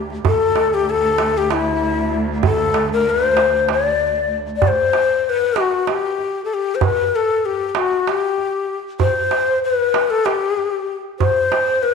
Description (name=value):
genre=Turkish makam ensemble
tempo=192 BPM (eighths)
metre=7/8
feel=straight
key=D makam ussak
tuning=A4 = 440 Hz
part: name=warm chamber cello section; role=drone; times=0.0-4.7 s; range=D2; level=-25 LUFS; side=right 2 dB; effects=none
part: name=darbuka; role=percussion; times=0.1-11.9 s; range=none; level=-21 LUFS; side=right 8 dB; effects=none
part: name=breathy ney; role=melody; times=0.3-11.9 s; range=E4-29c to D5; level=-17 LUFS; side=left 5 dB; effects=none
room=wet echo chamber reverb, RT60 1.8 s, small room ambience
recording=1960s-style stereo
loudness=-16 LUFS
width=side -5 dB against mid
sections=0.0-4.6 A section; 4.6-11.9 B section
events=none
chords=none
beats=| 0.25 0.56 0.88 1.19 1.50 1.81 2.12 | 2.44 2.75 3.06 3.37 3.69 4.00 4.31 | 4.62 4.94 5.25 5.56 5.87 6.19 6.50 | 6.81 7.12 7.44 7.75 8.06 8.38 8.69 | 9.00 9.31 9.63 9.94 10.25 10.57 10.88 | 11.19 11.51 11.82